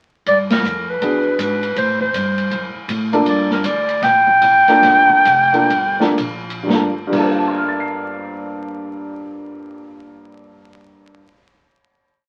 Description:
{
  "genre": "jazz, small-group swing and bop",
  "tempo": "112-161 BPM",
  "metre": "4/4",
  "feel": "swing 64% on 8ths",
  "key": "G minor",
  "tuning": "A4 = 440 Hz",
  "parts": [
    { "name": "warm clarinet", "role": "melody", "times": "0.3-6.2 s", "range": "Bb4 to G5", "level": "-16 LUFS", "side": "equal", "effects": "none" },
    { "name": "upright bass", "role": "bass", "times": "0.3-11.2 s", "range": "F1 to A2", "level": "-29 LUFS", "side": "equal", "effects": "none" },
    { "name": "open jazz drum kit", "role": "drums", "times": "0.3-7.2 s", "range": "crash cymbal, hi-hat, kick drum, ride cymbal, snare drum", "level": "-27 LUFS", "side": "equal", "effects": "none" },
    { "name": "warm upright piano", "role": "accompaniment", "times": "1.0-11.9 s", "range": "G2 to C7", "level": "-22 LUFS", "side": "equal", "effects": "none" }
  ],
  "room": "moderate club reverb, RT60 0.6 s",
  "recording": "very old 78 rpm record, vinyl crackle",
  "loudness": "-16 LUFS",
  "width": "mono",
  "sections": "0.3-6.7 A section; 6.7-11.0 final chord",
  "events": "band accent 0.5; slowing down 3.3-6.7",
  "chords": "0.3 Gm7; 1.0 E7; 1.8 Gsus24; 2.5 D; 3.3 Gm7"
}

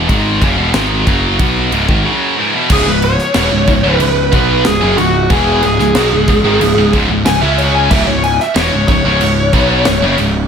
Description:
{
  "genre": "heavy metal",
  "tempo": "92 BPM",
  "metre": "4/4",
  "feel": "straight",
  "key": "C# minor",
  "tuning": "A4 = 440 Hz",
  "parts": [
    { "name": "heavy high-gain guitar", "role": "riff", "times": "0.0-10.5 s", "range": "C#2 to C#4", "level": "-17 LUFS", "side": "left 13 dB", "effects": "distortion" },
    { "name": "heavy high-gain guitar", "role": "riff", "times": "0.0-10.4 s", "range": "C#2 to C#4", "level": "-17 LUFS", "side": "right 14 dB", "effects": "distortion" },
    { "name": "fuzz picked electric bass", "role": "bass", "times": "0.0-10.5 s", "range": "C#1 to C#2", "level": "-16 LUFS", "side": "equal", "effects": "overdrive" },
    { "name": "modern studio drum kit", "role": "drums", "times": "0.1-10.3 s", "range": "crash cymbal, kick drum, ride cymbal, snare drum", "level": "-17 LUFS", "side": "equal", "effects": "none" },
    { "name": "high-gain lead guitar", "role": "melody", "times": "2.7-10.1 s", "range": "F#4 to G#5", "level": "-15 LUFS", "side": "left 1 dB", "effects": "distortion" }
  ],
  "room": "small room ambience",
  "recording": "none",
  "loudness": "-10 LUFS",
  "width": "side -7 dB against mid",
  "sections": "0.0-2.7 A section; 2.7-10.5 B section",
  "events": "lead electric guitar solo 2.7-10.5",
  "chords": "0.0 C#m"
}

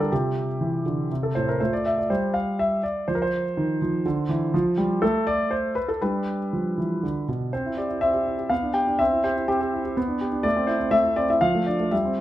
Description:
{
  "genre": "classical-period piano sonatina",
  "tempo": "122 BPM",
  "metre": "3/4",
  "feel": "straight",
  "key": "F major, C major from 4.5 s",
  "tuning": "A4 = 444 Hz",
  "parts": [
    { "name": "warm concert grand piano", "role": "solo", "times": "0.0-12.2 s", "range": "A2 to G5", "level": "-22 LUFS", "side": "equal", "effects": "none" }
  ],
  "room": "moderate recital hall reverb, RT60 1.5 s",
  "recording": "close, detailed microphones",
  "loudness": "-22 LUFS",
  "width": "side -14 dB against mid",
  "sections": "0.0-7.5 A section; 7.5-12.2 B section",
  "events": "none",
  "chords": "0.1 Csus4; 1.1 Am; 1.6 F; 3.1 F5; 4.1 Cadd9/D; 4.5 F; 6.0 G; 7.5 C; 8.5 G7/B; 9.0 C; 10.0 G/B; 10.5 Am; 11.4 Dm/F"
}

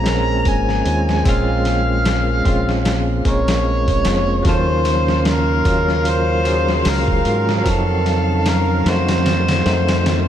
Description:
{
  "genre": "trip hop",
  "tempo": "75 BPM",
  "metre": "4/4",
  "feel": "swing 57% on 16ths",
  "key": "Bb minor",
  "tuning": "A4 = 440 Hz",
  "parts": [
    { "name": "overdriven harmonica", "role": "melody", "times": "0.0-10.3 s", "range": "F4 to Bb5", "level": "-21 LUFS", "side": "equal", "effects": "tape echo" },
    { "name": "bell-like tine electric piano", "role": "accompaniment", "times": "0.0-10.3 s", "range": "Gb3 to C5", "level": "-21 LUFS", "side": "equal", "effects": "tremolo, vintage 12-bit sampler grit, tape echo" },
    { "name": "muted chamber string section", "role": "sustained chords", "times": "0.0-10.3 s", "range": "Db3 to F5", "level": "-25 LUFS", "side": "equal", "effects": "none" },
    { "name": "deep dub fingered electric bass", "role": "bass", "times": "0.0-10.3 s", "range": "F1 to Ab2", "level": "-20 LUFS", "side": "equal", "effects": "none" },
    { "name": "dusty soul sampler-style drum kit", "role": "drums", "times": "0.1-10.3 s", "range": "hi-hat, kick drum, snare drum", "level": "-21 LUFS", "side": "equal", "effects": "overdrive" }
  ],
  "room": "moderate lush hall reverb, RT60 2.1 s",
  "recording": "dreamy mix soaked in reverb",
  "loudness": "-14 LUFS",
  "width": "side -10 dB against mid",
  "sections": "0.0-10.3 A section",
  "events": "none",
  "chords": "0.0 Bbm9; 4.5 Ebm9; 7.7 F7b9"
}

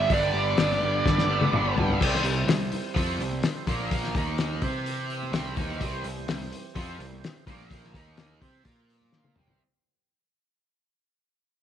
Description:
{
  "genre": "psychedelic rock",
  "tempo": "126 BPM",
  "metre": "4/4",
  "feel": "straight",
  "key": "unclear",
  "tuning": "A4 = 441 Hz",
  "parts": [
    { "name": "dark smooth lead guitar", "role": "melody", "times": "0.0-1.7 s", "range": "D5 to E5", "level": "-27 LUFS", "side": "right 3 dB", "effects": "wah, overdrive, slapback echo" },
    { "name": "tonewheel organ", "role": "sustained chords", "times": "0.0-9.6 s", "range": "Eb3 to F5", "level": "-39 LUFS", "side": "right 11 dB", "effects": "slow rotary speaker, overdrive" },
    { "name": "overdriven electric guitar", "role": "riff", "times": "0.0-9.6 s", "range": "G2 to C5", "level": "-31 LUFS", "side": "right 1 dB", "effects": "flanger" },
    { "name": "fuzz picked electric bass", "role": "bass", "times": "0.0-9.6 s", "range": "G1 to C3", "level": "-32 LUFS", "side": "right 1 dB", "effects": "overdrive" },
    { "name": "cloth-damped thuddy drum kit", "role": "drums", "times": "0.1-9.6 s", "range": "crash cymbal, hi-hat, kick drum, snare drum, toms", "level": "-28 LUFS", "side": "left 3 dB", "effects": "none" },
    { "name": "congas", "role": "percussion", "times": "0.1-9.6 s", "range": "none", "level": "-42 LUFS", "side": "left 9 dB", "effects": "none" }
  ],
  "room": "light reverb, small room ambience",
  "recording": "1960s-style stereo with parts hard left and right",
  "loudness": "-24 LUFS",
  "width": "side -10 dB against mid",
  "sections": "0.0-2.0 A section; 2.0-9.6 B section",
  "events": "drum fill 1.1-2.0, 9.1-9.6; fade-out 2.0-9.6",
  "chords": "0.0 G; 2.0 C; 3.7 Bb5; 4.2 Eb5; 4.6 C; 7.5 Bb5; 8.0 Eb5; 8.4 C; 8.7 Bb5; 9.4 C"
}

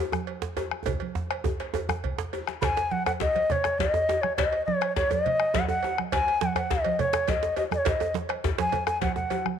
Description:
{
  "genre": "west african traditional, West African drum ensemble",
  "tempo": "137 BPM (dotted quarters)",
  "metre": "12/8",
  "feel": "straight",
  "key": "unclear",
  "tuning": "A4 = 441 Hz",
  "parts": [
    { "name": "bombo", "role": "percussion", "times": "0.1-9.6 s", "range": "none", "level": "-32 LUFS", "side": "left 2 dB", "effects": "none" },
    { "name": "congas", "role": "percussion", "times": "0.1-9.6 s", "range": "none", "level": "-35 LUFS", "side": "right 9 dB", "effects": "none" },
    { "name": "djembe", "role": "percussion", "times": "0.1-9.3 s", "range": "none", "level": "-33 LUFS", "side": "right 4 dB", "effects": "none" },
    { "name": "cowbell", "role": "percussion", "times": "0.3-9.4 s", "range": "none", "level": "-36 LUFS", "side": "right 13 dB", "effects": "none" },
    { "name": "djembe", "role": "percussion", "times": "0.6-9.4 s", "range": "none", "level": "-33 LUFS", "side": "left 8 dB", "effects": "none" },
    { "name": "bansuri", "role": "melody", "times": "2.6-9.5 s", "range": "C#5 to B5", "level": "-26 LUFS", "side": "left 1 dB", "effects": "none" }
  ],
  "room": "light reverb, studio reverb",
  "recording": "1960s-style stereo with parts hard left and right",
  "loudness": "-24 LUFS",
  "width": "side -8 dB against mid",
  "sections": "0.0-2.6 A section; 2.6-9.6 B section",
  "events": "drum fill 0.9-2.6, 9.2-9.6",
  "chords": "none"
}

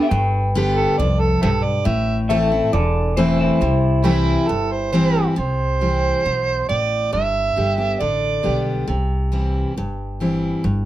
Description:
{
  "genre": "honky-tonk and classic country",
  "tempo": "137 BPM",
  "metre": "4/4",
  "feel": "straight",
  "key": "C major",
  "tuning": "A4 = 443 Hz",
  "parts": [
    { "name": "electric guitar through a small old amp", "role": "melody", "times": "0.0-4.9 s", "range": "E4 to G5", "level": "-21 LUFS", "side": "left 1 dB", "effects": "none" },
    { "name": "picked steel-string acoustic guitar", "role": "accompaniment", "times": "0.0-10.9 s", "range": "E2 to G4", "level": "-21 LUFS", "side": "left 1 dB", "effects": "none" },
    { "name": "upright bass", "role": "bass", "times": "0.1-10.9 s", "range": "E1 to C2", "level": "-22 LUFS", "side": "equal", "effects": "none" },
    { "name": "overdriven harmonica", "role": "second line", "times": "0.8-8.7 s", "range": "A3 to E5", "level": "-21 LUFS", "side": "right 5 dB", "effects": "none" }
  ],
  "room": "light reverb",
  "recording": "none",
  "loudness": "-17 LUFS",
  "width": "side -14 dB against mid",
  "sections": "0.0-5.4 A section; 5.4-10.9 B section",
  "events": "harmonica solo 5.4-10.9",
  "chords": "0.0 G; 1.9 Am; 3.6 C; 7.1 G; 8.9 C"
}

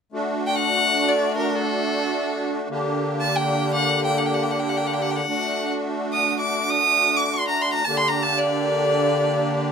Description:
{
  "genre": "klezmer",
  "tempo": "free time",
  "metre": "none",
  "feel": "none",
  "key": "unclear",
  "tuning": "A4 = 436 Hz",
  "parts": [
    { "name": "musette accordion", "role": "accompaniment", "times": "0.1-9.7 s", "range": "D3 to G4", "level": "-23 LUFS", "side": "equal", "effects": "none" },
    { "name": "clear violin", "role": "melody", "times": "0.5-9.7 s", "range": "A4 to Eb6", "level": "-21 LUFS", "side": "equal", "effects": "none" }
  ],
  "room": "moderate studio reverb, RT60 0.6 s",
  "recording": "minimal, uncompressed stereo recording",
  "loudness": "-19 LUFS",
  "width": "side -6 dB against mid",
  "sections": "0.1-9.7 A section",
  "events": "none",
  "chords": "0.1 D; 2.7 Gm/D; 5.3 D; 7.9 Gm/D"
}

